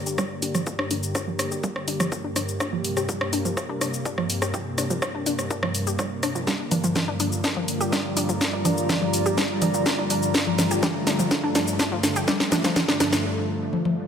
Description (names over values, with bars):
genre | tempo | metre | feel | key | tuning
melodic techno | 124 BPM | 4/4 | straight | G minor | A4 = 439 Hz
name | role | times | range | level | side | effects
lush unison pad | sustained chords | 0.0-14.1 s | G2 to Bb3 | -29 LUFS | equal | chorus, sidechain pumping
warbly tape-like pad | texture | 0.0-13.2 s | G3 to Bb5 | -31 LUFS | equal | chorus, built-in reverb, sidechain pumping
analog pluck | arpeggios | 0.1-13.0 s | F3 to G4 | -28 LUFS | left 1 dB | chorus, sidechain pumping, dub echo
house drum kit | drums | 0.1-13.9 s | congas, hi-hat, rim click, shaker, snare drum, toms | -25 LUFS | equal | overdrive
electronic kick drum | drums | 0.2-12.9 s | none | -34 LUFS | equal | overdrive, high-pass filter on kick, high-pass filter on room
room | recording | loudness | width
moderate lush hall reverb, RT60 2.0 s | none | -22 LUFS | side -7 dB against mid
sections
0.0-14.1 A section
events
build-up 0.0-14.1; filter sweep on synth arpeggio sound 0.0-14.1; drum fill 6.5-13.2, 13.7-14.1; break 13.2-14.1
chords
0.0 Gm; 6.5 Bb/G